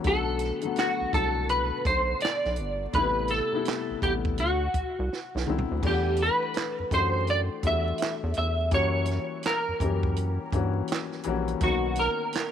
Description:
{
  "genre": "R&B, neo-soul",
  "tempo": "83 BPM",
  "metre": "4/4",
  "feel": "swing 61% on 16ths",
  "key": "unclear",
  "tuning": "A4 = 438 Hz",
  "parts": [
    { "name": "warm upright piano", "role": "accompaniment", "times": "0.0-12.5 s", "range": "B2 to F#5", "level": "-31 LUFS", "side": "left 8 dB", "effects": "none" },
    { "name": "compact cocktail drum kit", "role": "drums", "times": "0.0-12.5 s", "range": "crash cymbal, handclaps, hi-hat, kick drum, snare drum, toms", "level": "-32 LUFS", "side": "right 2 dB", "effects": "none" },
    { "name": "clean electric guitar", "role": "melody", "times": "0.1-12.5 s", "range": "F#4 to E5", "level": "-27 LUFS", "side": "right 1 dB", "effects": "ensemble chorus" },
    { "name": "rubbery square bass", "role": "bass", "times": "0.1-12.1 s", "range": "G1 to G2", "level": "-29 LUFS", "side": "equal", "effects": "transformer saturation" }
  ],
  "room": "little or no reverb",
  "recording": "1960s-style stereo, vinyl crackle",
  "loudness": "-24 LUFS",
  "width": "side -9 dB against mid",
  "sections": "0.0-5.8 A section; 5.8-12.5 B section",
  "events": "drum fill 5.1-5.8",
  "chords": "0.0 Bm7; 2.9 Am9; 4.4 D13; 5.8 Em11; 8.7 F#7b9; 11.6 Bmaj9"
}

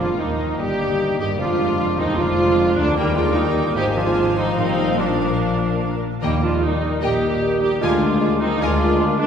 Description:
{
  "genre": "classical",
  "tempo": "150 BPM",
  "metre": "4/4",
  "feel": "rubato",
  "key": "Eb major",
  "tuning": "A4 = 440 Hz",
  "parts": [
    { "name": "warm symphonic violin section", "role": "melody", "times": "0.0-8.8 s", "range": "D4 to Ab5", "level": "-31 LUFS", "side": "left 4 dB", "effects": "none" },
    { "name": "clear symphonic violin section", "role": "second line", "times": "0.0-8.8 s", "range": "D4 to G5", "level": "-32 LUFS", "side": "left 2 dB", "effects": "none" },
    { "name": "dark cor anglais", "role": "second line", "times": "0.0-9.3 s", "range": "G3 to Eb4", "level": "-28 LUFS", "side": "right 1 dB", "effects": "none" },
    { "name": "mellow large flute ensemble", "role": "second line", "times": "0.0-9.3 s", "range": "D4 to C5", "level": "-31 LUFS", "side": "left 3 dB", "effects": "none" },
    { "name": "warm clarinet", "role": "second line", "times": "0.0-9.3 s", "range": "Bb3 to G4", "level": "-30 LUFS", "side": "equal", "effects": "none" },
    { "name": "rich symphonic viola section", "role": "accompaniment", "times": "0.0-9.3 s", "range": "Bb3 to G4", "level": "-22 LUFS", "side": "right 2 dB", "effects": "none" },
    { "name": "warm bassoon", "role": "accompaniment", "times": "0.0-9.3 s", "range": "D3 to Ab3", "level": "-28 LUFS", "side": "equal", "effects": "none" },
    { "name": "dark French horn section", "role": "sustained chords", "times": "0.0-9.3 s", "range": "Eb3 to Bb3", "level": "-27 LUFS", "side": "left 4 dB", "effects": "none" },
    { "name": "concert harp", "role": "arpeggios", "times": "0.0-9.3 s", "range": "Ab2 to Eb5", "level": "-28 LUFS", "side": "left 5 dB", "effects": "none" },
    { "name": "rich symphonic cello section", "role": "bass", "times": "0.0-8.9 s", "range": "D2 to Bb2", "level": "-28 LUFS", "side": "right 2 dB", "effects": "none" },
    { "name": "warm studio double bass section", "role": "bass", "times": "0.0-8.9 s", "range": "F1 to Eb2", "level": "-27 LUFS", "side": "right 2 dB", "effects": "none" }
  ],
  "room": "wet church reverb, RT60 2.6 s",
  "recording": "recorded in a church or concert hall",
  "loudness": "-17 LUFS",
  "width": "side -7 dB against mid",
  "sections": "0.0-9.3 A section",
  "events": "none",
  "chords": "0.0 Eb; 1.4 Bb7/F; 3.0 Eb; 3.8 Fm/Ab; 4.6 Bb; 6.2 Eb; 7.8 Bb7/D"
}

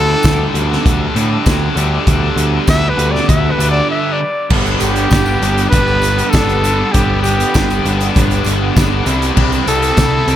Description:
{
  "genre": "indie rock",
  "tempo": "99 BPM",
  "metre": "4/4",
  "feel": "straight",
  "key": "G major",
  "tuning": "A4 = 440 Hz",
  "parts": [
    { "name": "clear trumpet", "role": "melody", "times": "0.0-10.4 s", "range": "G4 to E5", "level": "-19 LUFS", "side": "equal", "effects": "dub echo" },
    { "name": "fuzz guitar", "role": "riff", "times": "0.0-10.4 s", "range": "G2 to A4", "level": "-20 LUFS", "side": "right 7 dB", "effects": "distortion, analog chorus, dub echo" },
    { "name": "overdriven electric guitar", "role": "riff", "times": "0.0-10.4 s", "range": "G2 to A4", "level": "-20 LUFS", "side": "left 8 dB", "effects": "spring reverb, dub echo" },
    { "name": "growling picked electric bass", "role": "bass", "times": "0.0-10.4 s", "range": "G1 to A2", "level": "-17 LUFS", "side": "equal", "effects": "overdrive" },
    { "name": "loose indie drum kit", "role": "drums", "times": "0.2-10.4 s", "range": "crash cymbal, hi-hat, kick drum, snare drum", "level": "-16 LUFS", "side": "equal", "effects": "none" },
    { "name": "tambourine", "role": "percussion", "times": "0.2-10.4 s", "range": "none", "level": "-32 LUFS", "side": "right 6 dB", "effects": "none" }
  ],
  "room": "small room ambience",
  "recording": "echo-heavy mix",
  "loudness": "-11 LUFS",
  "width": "side -11 dB against mid",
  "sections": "0.0-4.5 A section; 4.5-10.4 B section",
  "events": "trumpet solo 0.0-4.5; break 3.9-4.5",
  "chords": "0.0 Dsus4; 4.5 G; 9.1 C"
}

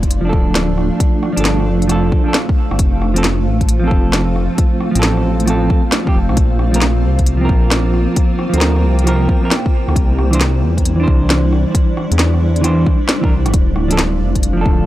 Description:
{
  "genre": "future garage",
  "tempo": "134 BPM",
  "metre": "4/4",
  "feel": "swing 66% on 16ths",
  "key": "D minor",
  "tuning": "A4 = 440 Hz",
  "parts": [
    { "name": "granular cloud pad", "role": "sustained chords", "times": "0.0-14.9 s", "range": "G3 to G5", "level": "-21 LUFS", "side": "right 1 dB", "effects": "built-in reverb, sidechain pumping" },
    { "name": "dark detuned saw bass", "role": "bass", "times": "0.0-14.9 s", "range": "D1 to E2", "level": "-16 LUFS", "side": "equal", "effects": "tube saturation, sidechain pumping" },
    { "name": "electronic kick drum", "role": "drums", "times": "0.0-14.8 s", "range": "none", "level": "-15 LUFS", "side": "equal", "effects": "none" },
    { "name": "organic electronic drum kit", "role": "drums", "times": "0.0-14.6 s", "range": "hi-hat, rim click, snare drum", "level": "-19 LUFS", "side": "equal", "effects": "none" },
    { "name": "semi-hollow electric guitar", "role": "accompaniment", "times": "0.2-14.9 s", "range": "E3 to C5", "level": "-19 LUFS", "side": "right 2 dB", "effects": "vintage 12-bit sampler grit, sidechain pumping, tape echo" }
  ],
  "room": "little or no reverb",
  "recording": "dry, gritty hardware recording",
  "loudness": "-12 LUFS",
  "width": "side -14 dB against mid",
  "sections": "0.0-14.9 A section",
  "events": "none",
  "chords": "0.0 Dm; 2.8 F; 6.4 Bbsus2; 10.0 Cadd9; 13.5 Dm"
}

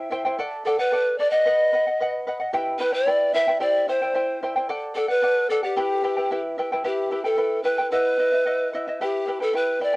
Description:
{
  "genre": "andean folk, Andean ensemble",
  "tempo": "111 BPM",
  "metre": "2/4",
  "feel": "straight",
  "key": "E minor",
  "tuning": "A4 = 440 Hz",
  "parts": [
    { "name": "charango", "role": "accompaniment", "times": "0.0-10.0 s", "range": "E4 to G5", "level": "-26 LUFS", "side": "equal", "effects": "cassette tape" },
    { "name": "breathy pan flute", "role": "melody", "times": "0.7-10.0 s", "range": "G4 to E5", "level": "-22 LUFS", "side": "equal", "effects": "analog delay" }
  ],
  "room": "light reverb",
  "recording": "home recording on cassette",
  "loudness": "-20 LUFS",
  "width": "side -22 dB against mid",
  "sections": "0.0-6.8 A section; 6.8-10.0 B section",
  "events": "none",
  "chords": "0.4 D; 1.5 B; 2.5 Em; 3.6 C; 4.7 D; 5.8 Em; 7.9 B/E; 9.0 Em"
}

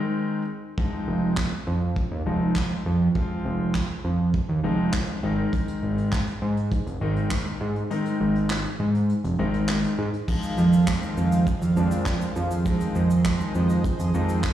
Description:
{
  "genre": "dance-pop",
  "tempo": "101 BPM",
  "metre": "4/4",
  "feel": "straight",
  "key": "F minor",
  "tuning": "A4 = 440 Hz",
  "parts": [
    { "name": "warm concert grand piano", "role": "accompaniment", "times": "0.0-14.5 s", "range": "Eb3 to F4", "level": "-28 LUFS", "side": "left 3 dB", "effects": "sidechain pumping" },
    { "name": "vintage brush drum kit", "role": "drums", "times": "0.8-14.5 s", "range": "crash cymbal, handclaps, hi-hat, kick drum, shaker, snare drum", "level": "-28 LUFS", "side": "equal", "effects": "none" },
    { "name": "fat analog bass", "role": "bass", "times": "1.1-14.5 s", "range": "F1 to Ab2", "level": "-23 LUFS", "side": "right 2 dB", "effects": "sidechain pumping" },
    { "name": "chorused pulse-width pad", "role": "sustained chords", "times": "10.3-14.5 s", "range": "Eb3 to F5", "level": "-29 LUFS", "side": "right 5 dB", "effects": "sidechain pumping" }
  ],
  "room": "small room ambience",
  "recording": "played on a big sound system in a bare room, stone room reverb, studio reverb",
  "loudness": "-22 LUFS",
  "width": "side -11 dB against mid",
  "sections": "0.0-10.3 A section; 10.3-14.5 B section",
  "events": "kick muted 7.9-10.3",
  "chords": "0.0 Ab; 0.8 Fm7"
}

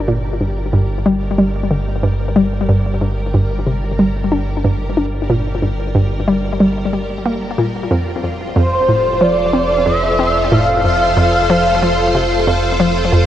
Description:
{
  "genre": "ambient, sequencer-driven space music",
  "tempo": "92 BPM",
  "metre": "4/4",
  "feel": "straight",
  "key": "G minor",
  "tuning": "A4 = 436 Hz",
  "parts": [
    { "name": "string machine, full ensemble", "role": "sustained chords", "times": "0.0-13.3 s", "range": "G3 to D5", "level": "-22 LUFS", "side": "equal", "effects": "ensemble chorus" },
    { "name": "round analog bass", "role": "bass", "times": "0.0-13.3 s", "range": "F1 to G1", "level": "-22 LUFS", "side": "equal", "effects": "none" },
    { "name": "hollow square pluck", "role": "riff", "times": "0.1-13.3 s", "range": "F2 to D4", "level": "-16 LUFS", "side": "equal", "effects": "chorus, ping-pong delay" },
    { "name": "expressive synth lead", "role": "melody", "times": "8.6-12.5 s", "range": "C5 to F5", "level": "-15 LUFS", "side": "right 1 dB", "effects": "ensemble chorus, ping-pong delay" }
  ],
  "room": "wet huge ambient reverb, RT60 7.2 s",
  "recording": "worn, warbling old tape, cassette tape, warbly pitch drift",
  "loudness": "-13 LUFS",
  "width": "side -11 dB against mid",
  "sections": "0.0-13.3 A section",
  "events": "fade-in on string machine 0.0-13.3",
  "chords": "0.0 Gm; 7.9 F"
}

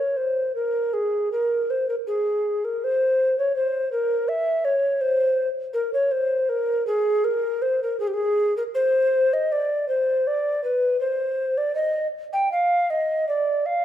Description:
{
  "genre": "classical, baroque-style fantasia for unaccompanied recorder",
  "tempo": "80 BPM",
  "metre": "4/4",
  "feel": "rubato",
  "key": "C minor from 8.0 s",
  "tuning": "A4 = 440 Hz",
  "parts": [
    { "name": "mellow hollow tenor recorder", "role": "solo", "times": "0.0-13.8 s", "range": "G4 to G5", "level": "-20 LUFS", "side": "equal", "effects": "none" }
  ],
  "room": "moderate scoring stage reverb, RT60 1.8 s",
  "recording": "minimal, uncompressed stereo recording",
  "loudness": "-20 LUFS",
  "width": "side -11 dB against mid",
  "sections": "0.0-13.8 A section",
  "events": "none",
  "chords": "none"
}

